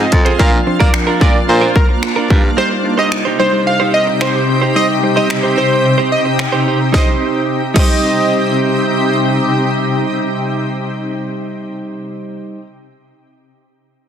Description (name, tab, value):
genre	dance-pop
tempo	110 BPM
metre	4/4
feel	straight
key	C minor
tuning	A4 = 443 Hz
part	plucky unison lead	melody	0.0-8.5 s	Bb4 to F5	-18 LUFS	equal	sidechain pumping, dub echo
part	soft electric-piano-like synth keys	accompaniment	0.0-12.6 s	F3 to C5	-21 LUFS	equal	chorus, sidechain pumping
part	shimmering ambient pad	sustained chords	0.0-11.8 s	C3 to G4	-17 LUFS	equal	chorus, built-in reverb, sidechain pumping
part	direct-recorded clean electric guitar	riff	0.0-12.7 s	D4 to C5	-21 LUFS	right 6 dB	lush chorus
part	breathy baritone saxophone	bass	0.0-2.5 s	F2 to Bb3	-16 LUFS	equal	sidechain pumping
part	house drum kit	drums	0.1-7.9 s	crash cymbal, finger snaps, hi-hat, kick drum, snare drum	-14 LUFS	equal	overdrive
room	moderate digital room reverb, RT60 1.2 s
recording	dense, heavily limited modern master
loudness	-12 LUFS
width	side -8 dB against mid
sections	0.0-6.9 A section; 6.9-11.3 B section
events	none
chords	0.4 Bb; 2.6 Cm